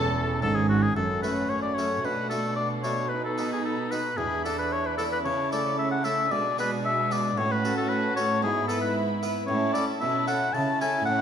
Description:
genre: classical, baroque-style concerto movement with solo episodes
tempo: 113 BPM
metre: 4/4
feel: straight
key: A major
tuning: A4 = 438 Hz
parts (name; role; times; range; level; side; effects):
- clear oboe; melody; 0.0-11.2 s; F#4 to A5; -27 LUFS; left 2 dB; none
- warm chamber violin section; melody; 0.0-11.2 s; F#5 to B5; -40 LUFS; left 6 dB; none
- rich chamber violin section; second line; 0.0-11.2 s; C#4 to A4; -34 LUFS; left 1 dB; none
- dark chamber viola section; accompaniment; 0.0-11.2 s; G#3 to D4; -33 LUFS; right 4 dB; none
- harpsichord; accompaniment; 0.0-11.2 s; E2 to B4; -33 LUFS; equal; none
- rich chamber double bass section; bass; 0.0-1.0 s; E1 to G#1; -32 LUFS; right 2 dB; none
- rich studio cello section; bass; 0.0-11.2 s; E2 to C#3; -31 LUFS; right 3 dB; none
room: wet recital hall reverb, RT60 1.3 s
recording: minimal, uncompressed stereo recording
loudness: -24 LUFS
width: side -8 dB against mid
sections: 1.0-11.2 A section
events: none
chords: 0.0 A; 1.0 F#m; 2.0 Bm7; 3.1 B; 4.2 E5; 5.2 A/C#; 6.3 G#dim/B; 7.4 F#m/A; 8.4 E/G#; 9.5 A

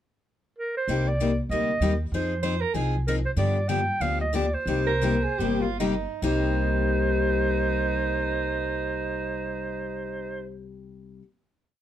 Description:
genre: acoustic string swing (jazz manouche)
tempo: 136-192 BPM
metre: 4/4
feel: swing 58% on 8ths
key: C minor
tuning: A4 = 440 Hz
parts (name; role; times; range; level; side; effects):
- breathy clarinet; melody; 0.6-10.5 s; Bb4 to G5; -28 LUFS; right 3 dB; none
- picked steel-string acoustic guitar; accompaniment; 0.9-11.2 s; C3 to Ab4; -28 LUFS; left 6 dB; none
- upright bass; bass; 0.9-11.2 s; G1 to G2; -28 LUFS; right 1 dB; none
- mellow soprano saxophone; second line; 2.4-10.5 s; Eb4 to C5; -31 LUFS; right 7 dB; none
room: light reverb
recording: dark, warm production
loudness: -23 LUFS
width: side -11 dB against mid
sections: 0.0-0.9 pickup bar; 0.9-6.2 A section; 6.2-9.8 final chord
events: slowing down 3.4-6.2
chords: 0.0 N.C.; 0.9 Cm7; 2.1 Fm7; 3.4 G7; 4.7 Cm7

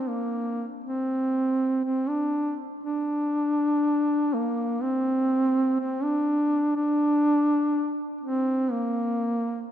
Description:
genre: caucasian folk, Caucasian lament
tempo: 61 BPM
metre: 4/4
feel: rubato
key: unclear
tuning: A4 = 441 Hz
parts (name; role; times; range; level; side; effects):
- dark duduk; solo; 0.0-9.7 s; Bb3 to D4; -23 LUFS; equal; none
room: moderate cathedral reverb, RT60 4.3 s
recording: minimal, uncompressed stereo recording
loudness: -23 LUFS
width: side -10 dB against mid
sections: 0.0-9.7 A section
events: none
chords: none

